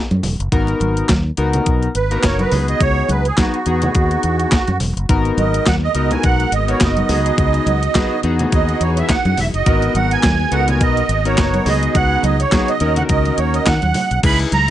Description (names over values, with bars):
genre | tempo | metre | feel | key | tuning
early-eighties boogie funk | 105 BPM | 4/4 | swing 56% on 16ths | G# minor | A4 = 440 Hz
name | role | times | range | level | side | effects
fingered electric bass | bass | 0.1-14.7 s | E1 to D#3 | -19 LUFS | equal | none
clean 12-bit digital drum machine | drums | 0.1-14.7 s | crash cymbal, handclaps, hi-hat, kick drum, snare drum | -18 LUFS | equal | overdrive
congas | percussion | 0.1-14.7 s | none | -24 LUFS | right 2 dB | none
chorused polysynth | accompaniment | 0.5-14.7 s | A#3 to B4 | -21 LUFS | left 4 dB | none
musette accordion | melody | 2.0-14.7 s | F#4 to B5 | -19 LUFS | right 6 dB | none
string machine, full ensemble | sustained chords | 5.1-14.2 s | C#3 to A#4 | -27 LUFS | equal | ensemble chorus
room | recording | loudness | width
little or no reverb | nothing above 10.3 kHz | -14 LUFS | side -12 dB against mid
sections
0.0-14.2 A section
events
accordion solo 0.0-14.2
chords
0.0 Esus2; 0.5 G#m9; 2.5 C#9sus4; 3.7 Emaj9; 5.1 G#m9; 7.1 C#9sus4; 8.2 Emaj9; 9.7 G#m9; 11.7 C#9sus4; 12.8 D#m7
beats
| 0.52 1.09 1.67 2.24 | 2.81 3.38 3.95 4.52 | 5.09 5.67 6.24 6.81 | 7.38 7.95 8.52 9.10 | 9.67 10.24 10.81 11.38 | 11.95 12.52 13.10 13.67 | 14.24